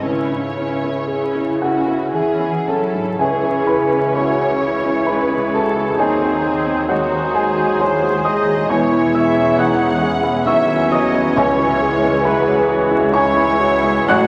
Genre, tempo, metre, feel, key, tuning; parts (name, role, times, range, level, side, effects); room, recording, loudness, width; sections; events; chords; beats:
classical, romantic movement for piano and orchestra; 55-70 BPM; 3/4; rubato; C# minor; A4 = 440 Hz
rich symphonic violin section; melody; 0.0-14.3 s; F#4 to F#5; -34 LUFS; equal
warm grand piano; melody; 0.0-14.3 s; A1 to F#6; -21 LUFS; equal
warm symphonic viola section; accompaniment; 0.0-14.3 s; E3 to G#4; -26 LUFS; equal
warm symphonic cello section; bass; 0.0-14.3 s; C#2 to F#3; -29 LUFS; equal
mellow hollow large flute ensemble; second line; 1.6-14.3 s; F#4 to F#5; -29 LUFS; equal
rich symphonic violin section; second line; 1.6-14.3 s; F#4 to F#5; -30 LUFS; equal
clear oboe; second line; 3.2-14.3 s; B#4 to C#5; -27 LUFS; equal
mellow bassoon; accompaniment; 3.2-14.3 s; E3 to F#3; -26 LUFS; equal
warm French horn section; sustained chords; 3.2-14.3 s; C#4 to G#4; -25 LUFS; equal
rich symphonic double bass section; bass; 3.2-14.3 s; E1 to D#2; -33 LUFS; equal
timpani; percussion; 11.4-12.6 s; C#3; -34 LUFS; equal
wet concert hall reverb, RT60 2.3 s; vinyl crackle; -17 LUFS; mono
0.0-3.2 A section; 3.2-14.3 B section
0.0 C#m; 6.0 G#7/D#; 8.7 C#m/E; 11.4 C#m
| 0.03 1.10 2.15 | 3.20 4.16 5.08 | 5.99 6.89 7.80 | 8.70 9.58 10.46 | 11.37 12.24 13.13 | 14.08